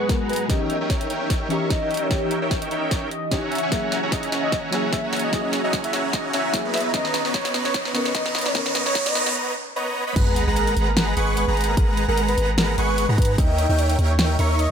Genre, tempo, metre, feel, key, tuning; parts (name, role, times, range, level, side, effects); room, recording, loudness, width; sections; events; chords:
future bass; 149 BPM; 4/4; swing 54% on 16ths, half-time; G# minor; A4 = 440 Hz
warm velvety synth lead; melody; 0.0-14.7 s; A#4 to E5; -28 LUFS; equal; chorus, cassette tape, sidechain pumping, tape echo
soft round pluck; accompaniment; 0.0-9.4 s; D#3 to A#5; -30 LUFS; left 3 dB; analog chorus, sidechain pumping, ping-pong delay
ethereal airy pad; sustained chords; 0.0-9.3 s; C#2 to A#5; -35 LUFS; equal; ensemble chorus, built-in reverb, sidechain pumping
dense compressed supersaw; riff; 0.0-14.7 s; G#3 to C#6; -25 LUFS; right 1 dB; sidechain pumping, low-pass filter
electronic kick drum; drums; 0.1-13.5 s; -23 LUFS; equal
pop drum kit; drums; 0.1-14.7 s; crash cymbal, hi-hat, snare drum; -26 LUFS; equal; high-pass filter on snare, high-pass filter on hats, high-pass filter on cymbals, high-pass filter on room
riser and sub drop; sound effects; 5.4-11.8 s; -30 LUFS; right 2 dB
airy dreamy lead; arpeggios; 10.2-14.7 s; G5 to C#6; -30 LUFS; equal; chorus, sidechain pumping
long sustained 808-style bass; bass; 10.2-14.7 s; G#1 to G#2; -22 LUFS; equal; sidechain pumping
moderate digital room reverb, RT60 1.1 s; high-pass filter; -19 LUFS; side -8 dB against mid
0.0-10.2 A section; 10.2-14.7 B section
build-up 0.0-10.2; drum fill 0.0-9.4; filter sweep on ambient pad 0.0-10.2; filter sweep 0.0-10.2; riser 5.4-9.4; break 9.4-10.2; drop 10.2-14.7; impact 10.2-11.8
0.5 D#7b9; 3.5 F#9/C#; 6.7 Bmaj9; 10.2 G#m9; 13.4 D#7b9